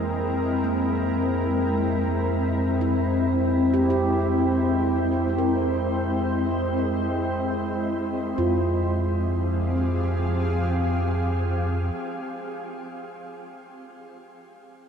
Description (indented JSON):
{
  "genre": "ambient",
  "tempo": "free time",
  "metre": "none",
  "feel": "none",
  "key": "F harmonic minor",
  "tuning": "A4 = 440 Hz",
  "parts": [
    { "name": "shimmering ambient pad", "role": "sustained chords", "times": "0.0-11.9 s", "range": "F3 to F5", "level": "-24 LUFS", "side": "left 1 dB", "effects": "chorus, built-in reverb, shimmer reverb" },
    { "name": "handpan", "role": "arpeggios", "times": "0.0-12.6 s", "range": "E3 to Bb4", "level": "-32 LUFS", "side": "right 4 dB", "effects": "diffuse ambient delay, shimmer reverb" },
    { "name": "warm sub bass", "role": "bass", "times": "0.0-11.9 s", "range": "F2", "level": "-27 LUFS", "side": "equal", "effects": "none" }
  ],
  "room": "wet huge ambient reverb, RT60 8.3 s",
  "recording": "none",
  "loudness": "-22 LUFS",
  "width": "side -7 dB against mid",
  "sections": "0.0-8.4 A section; 8.4-11.1 B section",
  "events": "none",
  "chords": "0.0 C7/F; 8.4 Fmadd9",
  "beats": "free time"
}